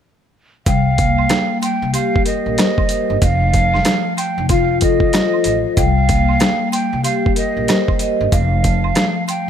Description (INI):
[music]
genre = hip hop, boom-bap hip-hop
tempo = 94 BPM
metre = 4/4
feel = swing 62% on 16ths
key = C dorian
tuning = A4 = 439 Hz
[part]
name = breathy mellow silver concert flute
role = melody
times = 0.7-9.5 s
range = Eb5 to G5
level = -20 LUFS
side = right 4 dB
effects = high-pass filter, low-pass filter, ping-pong delay
[part]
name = vibraphone with soft mallets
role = accompaniment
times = 0.7-9.5 s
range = F3 to Eb5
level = -19 LUFS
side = left 3 dB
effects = high-pass filter, low-pass filter
[part]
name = upright bass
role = bass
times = 0.7-8.9 s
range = F1 to C2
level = -19 LUFS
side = equal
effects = none
[part]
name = dusty soul sampler-style drum kit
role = drums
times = 0.7-9.5 s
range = hi-hat, kick drum, rim click, snare drum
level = -18 LUFS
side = equal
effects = overdrive
[part]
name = maracas and woodblock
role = percussion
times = 0.7-9.5 s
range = none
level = -31 LUFS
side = right 9 dB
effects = none
[sound]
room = light reverb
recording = none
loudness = -14 LUFS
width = side -8 dB against mid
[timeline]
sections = 0.7-9.5 A section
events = none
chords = 0.7 Cm7; 3.2 F7; 5.8 Cm7; 8.3 F